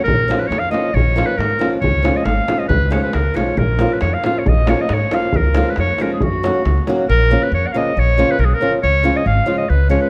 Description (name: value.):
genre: balkan folk, Balkan wedding band.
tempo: 137 BPM.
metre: 2/4.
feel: straight.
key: unclear.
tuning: A4 = 440 Hz.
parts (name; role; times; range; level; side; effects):
bright clarinet; melody; 0.0-10.1 s; F#4 to F#5; -22 LUFS; equal; none.
upright bass; bass; 0.1-10.0 s; G#1 to G#2; -20 LUFS; equal; none.
davul; percussion; 0.1-7.0 s; none; -24 LUFS; equal; none.
flamenco guitar; accompaniment; 0.3-10.1 s; C#3 to F#4; -23 LUFS; equal; none.
room: moderate concert hall reverb, RT60 2.3 s.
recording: dark, warm production.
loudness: -16 LUFS.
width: mono.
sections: 0.1-7.1 A section; 7.1-10.1 A section.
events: none.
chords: 0.1 A#m; 1.8 C#; 3.6 A#m; 5.3 C#; 6.2 F#; 7.1 A#m; 8.8 C#.